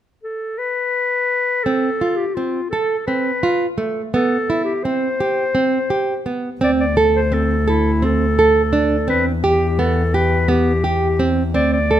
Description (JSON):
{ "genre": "contemporary instrumental, contemporary", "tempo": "170 BPM (eighths)", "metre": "7/8", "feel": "straight", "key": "C major", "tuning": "A4 = 440 Hz", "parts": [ { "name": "clear clarinet", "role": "melody", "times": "0.2-12.0 s", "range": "E4 to D5", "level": "-20 LUFS", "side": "left 2 dB", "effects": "none" }, { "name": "nylon-string guitar", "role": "arpeggios", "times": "1.7-12.0 s", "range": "A3 to A4", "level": "-18 LUFS", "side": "right 3 dB", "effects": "none" }, { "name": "dark double bass", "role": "bass", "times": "6.6-12.0 s", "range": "D2 to E2", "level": "-19 LUFS", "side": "left 1 dB", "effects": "none" } ], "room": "light reverb", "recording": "close, detailed microphones", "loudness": "-16 LUFS", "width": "side -11 dB against mid", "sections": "0.0-1.7 A section; 1.7-6.6 B section; 6.6-12.0 C section", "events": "none", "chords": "0.0 N.C.; 1.7 Amadd9; 4.1 Cmaj7; 6.6 D5; 9.1 Cmaj7/E" }